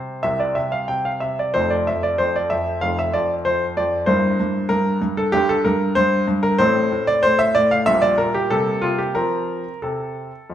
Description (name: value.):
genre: classical-period piano sonatina.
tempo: 95 BPM.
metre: 4/4.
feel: uneven beats, rubato.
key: F major.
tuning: A4 = 440 Hz.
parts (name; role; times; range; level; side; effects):
clear grand piano; solo; 0.0-10.5 s; F1 to G5; -17 LUFS; equal; none.
room: moderate recital hall reverb, RT60 1.4 s.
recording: minimal, uncompressed stereo recording.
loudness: -17 LUFS.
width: side -10 dB against mid.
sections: 0.0-10.5 A section.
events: none.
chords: 0.0 C5; 1.6 F; 4.1 Edim/G; 6.6 Amadd11; 7.9 Gm/Bb; 8.5 C5; 9.2 F.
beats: 0.24 0.90 | 1.55 2.20 2.83 3.47 | 4.09 4.72 5.35 5.97 | 6.60 7.24 7.87 8.51 | 9.17 9.83 10.49.